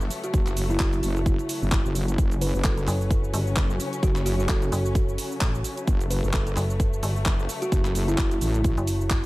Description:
bass house; 130 BPM; 4/4; swing 57% on 16ths; F# minor; A4 = 442 Hz
dark studio string section; sustained chords; 0.0-9.3 s; C#3 to C#4; -34 LUFS; left 2 dB; vintage 12-bit sampler grit, sidechain pumping
wobble bass; bass; 0.0-8.8 s; F#1 to A1; -26 LUFS; equal; chorus, tube saturation, sidechain pumping
house drum kit; drums; 0.0-9.3 s; handclaps, hi-hat, shaker; -32 LUFS; right 1 dB
kalimba; melody; 0.2-8.4 s; E4 to B4; -31 LUFS; right 1 dB; digital delay
electronic kick drum; drums; 0.3-9.2 s; -24 LUFS; equal
metallic FM bass; bass; 2.9-9.2 s; F#1 to A1; -26 LUFS; equal; tube saturation, sidechain pumping
digital ambience; -22 LUFS; side -20 dB against mid
0.0-9.3 A section
0.0 F#5
| 0.34 0.80 1.26 1.72 | 2.18 2.64 3.11 3.57 | 4.03 4.49 4.95 5.41 | 5.88 6.34 6.80 7.26 | 7.72 8.18 8.64 9.11

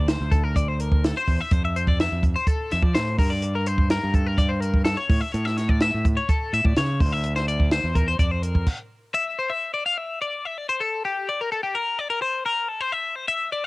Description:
math rock and midwest emo; 126 BPM; 4/4; straight; A4 = 439 Hz
twelve-string electric guitar; arpeggios; 0.0-13.7 s; G4 to F5; -25 LUFS; left 3 dB
growling fingered electric bass; bass; 0.0-8.6 s; D2 to F3; -25 LUFS; equal; overdrive
compact cocktail drum kit; drums; 0.1-8.8 s; crash cymbal, hi-hat, kick drum, snare drum; -22 LUFS; right 1 dB; cassette tape
small room ambience; home recording on cassette; -21 LUFS; side -21 dB against mid
0.0-9.1 A section; 9.1-13.7 B section
stop 8.7-9.1
0.0 Dsus2; 1.5 Fmaj7; 3.2 Gmadd9; 5.1 A; 7.0 Dsus2; 8.2 F5; 9.1 D7sus2; 11.0 Gm; 12.7 C
0.08 0.56 1.03 | 1.51 1.99 2.47 2.94 | 3.42 3.90 4.38 4.85 | 5.33 5.81 6.29 6.76 | 7.24 7.72 8.19 8.67 | 9.14 9.62 10.09 10.56 | 11.04 11.51 11.98 12.46 | 12.93 13.40

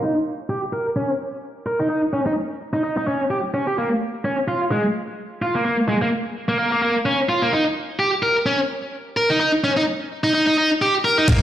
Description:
breakbeat, breaks; 128 BPM; 4/4; swing 55% on 16ths; A4 = 441 Hz
high-gain distorted guitar; riff; 0.0-11.4 s; Ab3 to Bb4; -19 LUFS; equal; distortion, low-pass filter, tape echo
breakbeat sampler-style drum kit; drums; 11.3-11.4 s; crash cymbal, kick drum, ride cymbal; -16 LUFS; equal
sub drop; sound effects; 11.3-11.4 s; -19 LUFS; equal
moderate plate reverb, RT60 1.8 s; played on a big sound system in a bare room, stone room reverb, low-pass filter; -18 LUFS; side -11 dB against mid
0.0-11.3 A section
filter sweep on distorted electric guitar 0.0-11.3; filter sweep 0.0-11.3
| 0.03 0.50 0.97 1.44 | 1.91 2.37 2.84 3.31 | 3.78 4.25 4.72 5.19 | 5.66 6.12 6.59 7.06 | 7.53 8.00 8.47 8.94 | 9.40 9.87 10.34 10.81 | 11.28

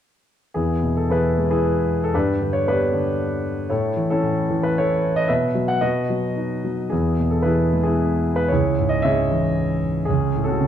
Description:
classical, lyrical solo piano; 113 BPM; 3/4; rubato; E major; A4 = 441 Hz
warm concert grand piano; solo; 0.5-10.7 s; C#2 to F#5; -18 LUFS; equal
moderate recital hall reverb, RT60 1.4 s; dark, warm production; -18 LUFS; side -9 dB against mid
0.5-10.7 A section
0.5 E; 2.1 G; 3.7 A; 5.3 Bsus4; 5.8 B; 6.9 E; 8.5 C#m; 10.1 F#m/C#
| 0.55 1.08 1.62 | 2.14 2.66 3.18 | 3.70 4.23 4.76 | 5.29 5.81 6.36 | 6.92 7.46 7.99 | 8.52 9.04 9.56 | 10.08 10.60

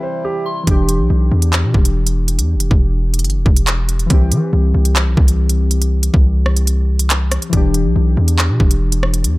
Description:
hip hop, drill; 140 BPM; 4/4; half-time; E minor; A4 = 444 Hz
soft synth bell; second line; 0.0-0.7 s; G5 to C6; -30 LUFS; left 2 dB; chorus, phaser, analog delay
warbly lo-fi synth keys; accompaniment; 0.0-9.4 s; E3 to G4; -22 LUFS; left 2 dB; chorus, low-pass filter
mellow accordion; sustained chords; 0.0-0.6 s; C3 to E4; -30 LUFS; left 2 dB
hard-hitting 808-style bass; bass; 0.7-9.4 s; E1 to E3; -15 LUFS; equal
drill drum kit; drums; 0.7-9.3 s; handclaps, hi-hat, kick drum, rim click; -15 LUFS; equal; overdrive
little or no reverb; echo-heavy mix; -12 LUFS; side -20 dB against mid
0.7-9.4 A section
break 0.0-0.7
0.0 C; 0.7 Em7; 4.1 C; 7.5 Em7
0.24 | 0.67 1.10 1.53 1.96 | 2.39 2.81 3.24 3.67 | 4.10 4.53 4.96 5.39 | 5.82 6.24 6.67 7.10 | 7.53 7.96 8.39 8.81 | 9.24

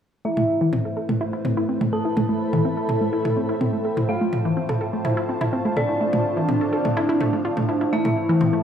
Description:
melodic techno; 125 BPM; 4/4; straight; A minor; A4 = 441 Hz
fat analog lead; melody; 0.2-8.6 s; D4 to A4; -26 LUFS; equal; ensemble chorus, tape echo
dark detuned synth bell; second line; 0.2-8.6 s; D5 to A5; -30 LUFS; right 1 dB; chorus, phaser, low-pass filter, tape echo
dark analog pad; sustained chords; 0.7-8.6 s; A3 to A5; -29 LUFS; equal; chorus
wide unison pluck; arpeggios; 0.2-8.6 s; E3 to A4; -24 LUFS; equal; tape echo
overtone-sweeping drone; drone; 0.7-8.6 s; A2 to A3; -33 LUFS; equal; chorus, built-in reverb
granular cloud pad; texture; 1.6-8.6 s; C4 to B5; -33 LUFS; right 1 dB; built-in reverb
electronic toms; drums; 0.4-8.5 s; -27 LUFS; equal; small room reverb
light reverb; dry, gritty hardware recording, studio reverb; -20 LUFS; side -8 dB against mid
0.2-8.6 A section
filter sweep on synth pluck 0.2-8.6; filter sweep on analog synth lead 0.2-8.6; filter sweep on synth bell 0.2-8.6
0.2 Amadd9; 4.1 F; 7.9 Amadd9
| 0.25 0.73 1.21 1.69 | 2.17 2.65 3.13 3.61 | 4.09 4.57 5.05 5.53 | 6.01 6.49 6.97 7.45 | 7.93 8.41

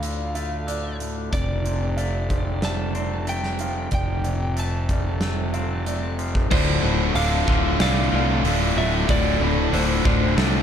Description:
post-rock; 93 BPM; 4/4; straight; D minor; A4 = 439 Hz
electric slide guitar; melody; 0.0-10.3 s; C5 to A5; -30 LUFS; equal; digital delay
pedal harmonium; sustained chords; 0.0-10.6 s; D3 to A4; -35 LUFS; right 4 dB
felt-muted upright piano; arpeggios; 0.0-10.6 s; F4 to F5; -36 LUFS; right 7 dB; digital delay
semi-hollow electric guitar; arpeggios; 0.0-10.6 s; D2 to F4; -31 LUFS; left 4 dB; spring reverb, digital delay
fuzz fingered electric bass; bass; 0.0-10.6 s; D1 to D2; -24 LUFS; equal; overdrive
huge arena drum kit; drums; 0.0-10.5 s; crash cymbal, hi-hat, kick drum, snare drum; -27 LUFS; right 1 dB
biting overdriven guitar; riff; 6.5-10.6 s; D2 to D3; -26 LUFS; right 14 dB
distorted electric guitar; riff; 6.5-10.6 s; D2 to D3; -25 LUFS; left 15 dB; overdrive
small room ambience; dark, warm production; -20 LUFS; side -8 dB against mid
0.0-6.5 A section; 6.5-10.6 B section
0.0 Dm; 1.3 F6; 6.5 Dm
0.02 0.67 | 1.32 1.97 2.62 3.27 | 3.92 4.57 5.21 5.86 | 6.51 7.15 7.80 8.44 | 9.08 9.73 10.37

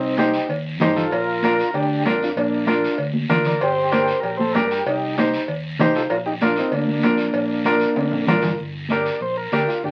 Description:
latin, cumbia; 193 BPM; 4/4; straight; A4 = 440 Hz
combo organ; melody; 0.0-9.9 s; Bb3 to D5; -24 LUFS; equal
fingered electric bass; bass; 0.0-9.9 s; G1 to G2; -32 LUFS; equal
bright upright piano; accompaniment; 0.2-9.7 s; D4 to C5; -23 LUFS; equal
congas; percussion; 0.2-9.9 s; -26 LUFS; equal
cowbell and timbales; percussion; 0.2-8.5 s; -30 LUFS; equal
guiro; percussion; 0.2-9.9 s; -36 LUFS; equal
wet studio ambience, RT60 0.5 s; very old 78 rpm record, vinyl crackle; -20 LUFS; mono
0.0-8.6 A section; 8.6-9.9 B section
drum fill 8.0-8.6; transistor combo organ solo 8.6-9.9
0.0 Cm; 1.1 Bb; 3.6 Gm; 4.9 Cm; 6.1 Bb; 8.6 Gm
0.19 0.50 0.81 | 1.12 1.43 1.75 2.06 | 2.37 2.68 2.99 3.30 | 3.61 3.92 4.24 4.55 | 4.86 5.17 5.48 5.79 | 6.10 6.42 6.73 7.04 | 7.35 7.66 7.97 8.28 | 8.59 8.91 9.22 9.53 | 9.84

